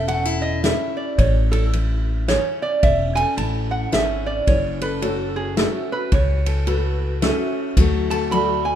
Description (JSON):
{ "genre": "honky-tonk and classic country", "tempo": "109 BPM", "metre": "3/4", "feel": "swing 62% on 8ths", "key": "A major", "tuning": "A4 = 440 Hz", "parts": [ { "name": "lap resonator guitar", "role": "second line", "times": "0.0-8.8 s", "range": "G#4 to B5", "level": "-23 LUFS", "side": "right 3 dB", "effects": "none" }, { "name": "picked steel-string acoustic guitar", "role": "accompaniment", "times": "0.0-8.8 s", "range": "F#2 to A4", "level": "-26 LUFS", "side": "left 4 dB", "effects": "none" }, { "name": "upright bass", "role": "bass", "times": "0.0-8.8 s", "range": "E1 to D2", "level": "-22 LUFS", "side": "equal", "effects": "none" }, { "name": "unplugged drum kit", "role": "drums", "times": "0.1-8.5 s", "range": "kick drum, ride cymbal, snare drum", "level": "-24 LUFS", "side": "equal", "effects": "none" }, { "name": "honky-tonk upright piano", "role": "accompaniment", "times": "5.0-8.8 s", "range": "F#4 to E5", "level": "-27 LUFS", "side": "right 3 dB", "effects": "none" } ], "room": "light reverb", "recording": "minimal, uncompressed stereo recording", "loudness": "-18 LUFS", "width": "side -10 dB against mid", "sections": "0.0-8.8 A section", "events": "resonator guitar played with a steel bar solo 0.0-8.8", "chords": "0.0 A; 4.5 F#m; 7.8 D" }